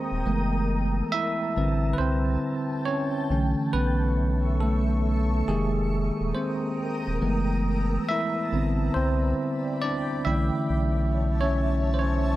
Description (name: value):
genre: lo-fi hip hop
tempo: 69 BPM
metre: 4/4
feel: swing 66% on 16ths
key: unclear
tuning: A4 = 440 Hz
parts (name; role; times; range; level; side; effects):
- bell-like tine electric piano; accompaniment; 0.0-12.4 s; D3 to E5; -26 LUFS; right 1 dB; medium stereo tremolo, cassette tape
- granular cloud pad; sustained chords; 0.0-12.4 s; A4 to E6; -34 LUFS; left 1 dB; built-in reverb
- saturated sub bass; bass; 0.1-12.4 s; Eb1 to C2; -26 LUFS; equal; none
room: moderate studio reverb, RT60 0.5 s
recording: dark, warm production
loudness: -23 LUFS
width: side -15 dB against mid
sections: 0.0-12.4 A section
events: tine electric piano solo 0.0-12.4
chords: 0.2 F#m11; 1.6 Am11; 3.3 Bm11; 5.5 Fm11; 7.2 F#m11; 8.5 Am11; 10.2 Bm11